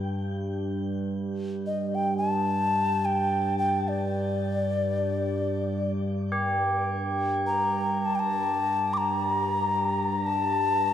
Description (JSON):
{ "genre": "world meditative, free-time meditation music", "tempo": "free time", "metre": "none", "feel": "none", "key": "G hirajoshi", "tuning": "A4 = 440 Hz", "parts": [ { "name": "analog drone", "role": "drone", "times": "0.0-10.9 s", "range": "G2", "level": "-29 LUFS", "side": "equal", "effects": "chorus" }, { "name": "tubular bells", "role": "texture", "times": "0.0-10.9 s", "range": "G4 to Bb4", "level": "-30 LUFS", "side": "right 1 dB", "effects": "shimmer reverb" }, { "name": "mellow alto ocarina", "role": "melody", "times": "1.7-10.9 s", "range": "D5 to D6", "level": "-27 LUFS", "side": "left 1 dB", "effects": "shimmer reverb" } ], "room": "wet church reverb, RT60 3.2 s", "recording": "none", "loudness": "-24 LUFS", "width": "side -10 dB against mid", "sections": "0.0-10.9 A section", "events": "none", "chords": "none" }